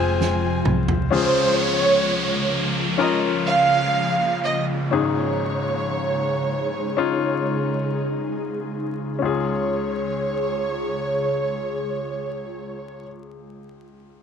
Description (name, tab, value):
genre	pop ballad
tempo	51-65 BPM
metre	4/4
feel	straight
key	Db major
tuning	A4 = 440 Hz
part	warm symphonic violin section	melody	0.0-13.0 s	C5 to Ab5	-24 LUFS	right 4 dB	none
part	clear baby grand piano	accompaniment	0.0-14.2 s	Ab1 to C5	-26 LUFS	left 8 dB	none
part	ethereal airy pad	sustained chords	0.0-13.0 s	C3 to Ab4	-27 LUFS	equal	ensemble chorus, built-in reverb
part	hollow-body short-scale fingered electric bass	bass	0.0-1.1 s	F1 to C2	-23 LUFS	equal	none
part	natural country drum kit	drums	0.2-1.1 s	snare drum, toms	-27 LUFS	right 3 dB	none
part	downlifter	sound effects	1.1-9.2 s	none	-29 LUFS	right 1 dB	none
room	moderate spring reverb, RT60 2.9 s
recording	1960s-style stereo, vinyl crackle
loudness	-20 LUFS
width	side -7 dB against mid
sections	0.0-1.1 A section; 1.1-9.2 B section; 9.2-13.9 C section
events	drum fill 0.2-1.1; slowing down 1.1-9.2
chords	0.0 Fm; 1.1 Db; 4.9 Absus4; 9.2 Db